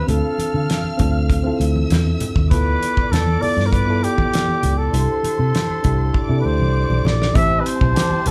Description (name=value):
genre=lush 1970s-style soul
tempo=99 BPM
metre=4/4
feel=straight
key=unclear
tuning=A4 = 437 Hz
part: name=warm flugelhorn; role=melody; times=0.0-8.3 s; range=G4 to E5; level=-24 LUFS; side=equal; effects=none
part: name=warm studio string section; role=second line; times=0.0-8.3 s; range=C4 to F6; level=-34 LUFS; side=equal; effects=none
part: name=mellow reed electric piano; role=accompaniment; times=0.0-8.3 s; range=B3 to C5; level=-27 LUFS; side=equal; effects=none
part: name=vintage muted fingered electric bass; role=bass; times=0.0-8.3 s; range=A1 to D3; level=-22 LUFS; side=equal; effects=none
part: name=damped 70s drum kit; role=drums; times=0.1-8.3 s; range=hi-hat, kick drum, snare drum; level=-23 LUFS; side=equal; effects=none
part: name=congas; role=percussion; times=0.1-8.3 s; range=none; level=-31 LUFS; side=equal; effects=none
part: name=mellow French horn section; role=sustained chords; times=7.4-8.3 s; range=G3 to C4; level=-34 LUFS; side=equal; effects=none
part: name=glockenspiel with soft plastic mallets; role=texture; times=8.0-8.3 s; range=D6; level=-34 LUFS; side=equal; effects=none
room=moderate large studio reverb, RT60 1.0 s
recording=band playing live in one room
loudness=-18 LUFS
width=mono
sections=0.0-7.4 A section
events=drum fill 6.1-7.4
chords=0.1 Dm9; 2.5 G13/D; 4.9 C69; 7.4 Am7